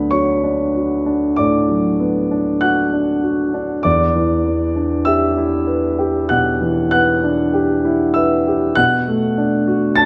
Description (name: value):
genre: classical, impressionist solo piano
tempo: 49 BPM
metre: 4/4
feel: rubato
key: unclear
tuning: A4 = 440 Hz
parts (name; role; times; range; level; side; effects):
- warm concert grand piano; solo; 0.0-10.1 s; D2 to A6; -17 LUFS; equal; none
room: moderate recital hall reverb, RT60 1.4 s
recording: none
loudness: -17 LUFS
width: mono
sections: 0.0-10.1 A section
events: none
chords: 0.0 D6; 3.8 Em7; 8.8 Bm7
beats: 0.12 1.38 2.62 | 3.85 5.07 6.30 7.55 | 8.77 9.97